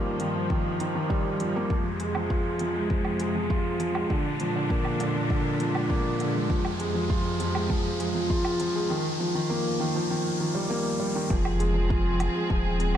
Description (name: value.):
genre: piano and strings electronica.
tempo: 100 BPM.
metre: 4/4.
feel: straight.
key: F dorian.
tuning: A4 = 441 Hz.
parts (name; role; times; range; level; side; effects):
clear symphonic string section; sustained chords; 0.0-13.0 s; F2 to Ab4; -32 LUFS; equal; sidechain pumping.
felt-muted upright piano; riff; 0.0-13.0 s; D3 to F4; -27 LUFS; equal; digital delay.
riser; sound effects; 0.0-11.3 s; none; -37 LUFS; left 1 dB; none.
electronic hi-hat and woodblock; drums; 0.2-13.0 s; none; -38 LUFS; right 4 dB; overdrive, studio reverb.
electronic kick drum; drums; 0.5-12.6 s; none; -28 LUFS; equal; studio reverb.
warm sub bass; bass; 11.3-13.0 s; Eb1 to F1; -27 LUFS; equal; sidechain pumping.
room: wet echo chamber reverb, RT60 2.5 s.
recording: dark, warm production.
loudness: -24 LUFS.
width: side -10 dB against mid.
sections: 0.0-11.3 A section; 11.3-13.0 B section.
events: build-up 0.0-11.3; riser 0.0-11.3; drop 11.3-13.0.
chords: 0.0 Ebadd9; 1.7 Fm; 4.1 Bb7; 6.5 Fm; 8.9 Ebadd9; 11.3 Fm.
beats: 0.50 1.10 | 1.70 2.30 2.90 3.50 | 4.10 4.70 5.30 5.90 | 6.50 7.10 7.70 8.30 | 8.90 9.50 10.10 10.70 | 11.30 11.90 12.50.